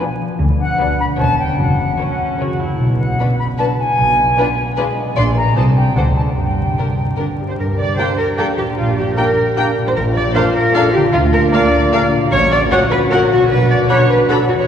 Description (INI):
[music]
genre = cinematic, playful, whimsical film cue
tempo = 152 BPM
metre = 3/4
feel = straight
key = B minor, G minor from 5.2 s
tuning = A4 = 435 Hz
[part]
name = warm studio violin section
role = melody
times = 0.0-14.4 s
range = Bb4 to B5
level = -25 LUFS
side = left 4 dB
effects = none
[part]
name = bright small flute group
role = second line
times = 0.0-14.4 s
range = F#5 to D6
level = -21 LUFS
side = left 1 dB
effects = none
[part]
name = dark studio violin section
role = second line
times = 0.0-14.7 s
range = F4 to D5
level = -24 LUFS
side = left 2 dB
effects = none
[part]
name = warm studio viola section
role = accompaniment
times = 0.0-14.4 s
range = Bb3 to Bb4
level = -27 LUFS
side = right 2 dB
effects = none
[part]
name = concert harp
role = arpeggios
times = 0.0-14.7 s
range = E2 to D5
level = -21 LUFS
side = left 1 dB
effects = none
[part]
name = warm studio cello section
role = bass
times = 0.4-14.7 s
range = D2 to D5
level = -20 LUFS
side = right 1 dB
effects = none
[part]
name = warm studio double bass section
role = bass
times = 0.4-13.8 s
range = E1 to G2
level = -20 LUFS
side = right 1 dB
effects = none
[part]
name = mellow French horn section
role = sustained chords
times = 7.6-14.7 s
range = Bb3 to G4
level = -19 LUFS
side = left 3 dB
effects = none
[part]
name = mellow clarinet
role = second line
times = 8.0-14.4 s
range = D4 to F#4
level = -28 LUFS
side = equal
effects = none
[part]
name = warm oboe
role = second line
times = 8.0-14.4 s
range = F5 to G5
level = -26 LUFS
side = right 2 dB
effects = none
[part]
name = warm bassoon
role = accompaniment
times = 8.0-14.4 s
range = F#3 to Bb3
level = -26 LUFS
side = right 2 dB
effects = none
[sound]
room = wet cathedral reverb, RT60 5.5 s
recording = recorded in a church or concert hall, vinyl crackle, nothing above 10.4 kHz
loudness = -13 LUFS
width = side -8 dB against mid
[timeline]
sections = 0.0-7.6 A section; 7.6-14.7 B section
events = none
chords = 0.4 Bm/D; 1.2 C#m7b5/E; 1.6 F#; 2.8 Bm; 4.0 Bdim7; 5.2 Bb; 5.6 Am/C; 6.0 D7(no3); 6.4 G5; 7.6 Gm; 8.8 Gm/Bb; 10.0 Bb; 11.1 Bb/D; 12.3 F#/A#; 13.5 Bm